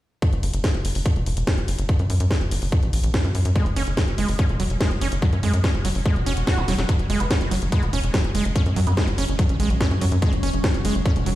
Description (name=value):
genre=psychedelic trance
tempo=144 BPM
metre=4/4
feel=straight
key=F# minor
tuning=A4 = 440 Hz
part: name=electronic kick drum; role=drums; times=0.2-11.1 s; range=none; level=-20 LUFS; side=equal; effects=none
part: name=garage drum kit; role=drums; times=0.2-11.3 s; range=hi-hat, snare drum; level=-29 LUFS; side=equal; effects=none
part: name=tight sequencer bass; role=bass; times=0.3-11.3 s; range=E1 to F#2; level=-22 LUFS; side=equal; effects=none
part: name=overdriven acid bass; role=riff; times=3.6-11.3 s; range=F#3 to F#4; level=-27 LUFS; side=right 2 dB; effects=distortion, auto-pan, sidechain pumping, dub echo
part: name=swell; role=sound effects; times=6.1-6.9 s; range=none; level=-34 LUFS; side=right 3 dB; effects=none
part: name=swarming drone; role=sustained chords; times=7.7-11.4 s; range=F#3 to C#4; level=-31 LUFS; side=equal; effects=built-in reverb, sidechain pumping
part: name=resonant blip pluck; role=second line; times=7.2-9.0 s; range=B3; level=-35 LUFS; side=right 2 dB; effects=phaser, wide subtle chorus, cassette tape, sidechain pumping, high-pass filter, tape echo
room=little or no reverb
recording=played on a big sound system in a bare room, stone room reverb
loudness=-19 LUFS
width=side -15 dB against mid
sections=0.2-6.9 A section; 6.9-11.4 B section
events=swell 6.1-6.9; drum fill 6.7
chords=0.2 F#5